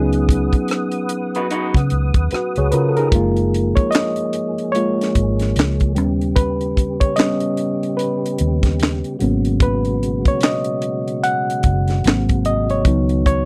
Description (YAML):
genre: R&B, neo-soul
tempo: 74 BPM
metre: 4/4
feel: swing 61% on 16ths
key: F# major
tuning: A4 = 440 Hz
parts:
  - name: reed electric piano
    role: accompaniment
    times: 0.0-13.5 s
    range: F#3 to F#5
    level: -22 LUFS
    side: equal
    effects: none
  - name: percussive tonewheel organ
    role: sustained chords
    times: 0.0-13.5 s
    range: B2 to D#6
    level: -29 LUFS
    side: equal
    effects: slow rotary speaker, chorus vibrato
  - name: vintage muted fingered electric bass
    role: bass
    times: 0.0-13.5 s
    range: F#1 to C#3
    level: -22 LUFS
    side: equal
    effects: none
  - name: tight funk drum kit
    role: drums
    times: 0.1-13.5 s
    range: handclaps, hi-hat, kick drum, rim click, snare drum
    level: -20 LUFS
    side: equal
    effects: none
  - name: electric guitar through a small old amp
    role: second line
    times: 1.4-1.7 s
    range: D#4 to B4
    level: -24 LUFS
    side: equal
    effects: none
room: little or no reverb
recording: dry, close 1970s-style studio recording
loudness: -18 LUFS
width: mono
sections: 0.0-3.1 A section; 3.1-13.5 A section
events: reed electric piano solo 3.1-13.5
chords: 0.0 C#9sus4; 3.1 F#maj9; 6.0 D#7b13; 9.2 G#m11; 12.0 G#7; 12.9 C#9sus4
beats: 0.69 1.50 2.31 | 3.12 3.93 4.74 5.55 | 6.36 7.17 7.99 8.80 | 9.61 10.42 11.23 12.04 | 12.85